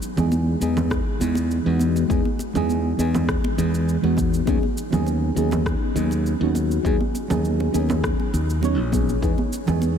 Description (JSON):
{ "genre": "sunset chillout", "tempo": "101 BPM", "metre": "4/4", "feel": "straight", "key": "B major", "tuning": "A4 = 440 Hz", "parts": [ { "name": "electronic shaker, congas and rim click", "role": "drums", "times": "0.0-9.9 s", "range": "none", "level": "-32 LUFS", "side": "right 2 dB", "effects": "none" }, { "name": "mellow FM electric piano", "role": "accompaniment", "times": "0.2-10.0 s", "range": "E3 to C#5", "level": "-24 LUFS", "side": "moving between left 5 dB and right 4 dB", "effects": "chorus, phaser, auto-pan, analog delay" }, { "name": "modern bright fingered electric bass", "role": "bass", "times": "0.2-10.0 s", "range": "A#1 to E2", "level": "-22 LUFS", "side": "equal", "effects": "none" }, { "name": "congas", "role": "percussion", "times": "0.2-9.9 s", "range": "none", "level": "-31 LUFS", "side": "right 3 dB", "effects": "none" }, { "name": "electronic kick drum", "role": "drums", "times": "0.9-9.4 s", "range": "none", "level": "-25 LUFS", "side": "equal", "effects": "none" } ], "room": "light reverb, digital ambience", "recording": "none", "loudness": "-19 LUFS", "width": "side -8 dB against mid", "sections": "0.0-10.0 A section", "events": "none", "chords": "0.0 Emaj7; 4.5 B69/D#; 9.2 Emaj7", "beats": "0.32 0.91 1.50 | 2.10 2.69 3.29 3.88 | 4.47 5.07 5.66 6.26 | 6.85 7.45 8.04 8.63 | 9.23 9.82" }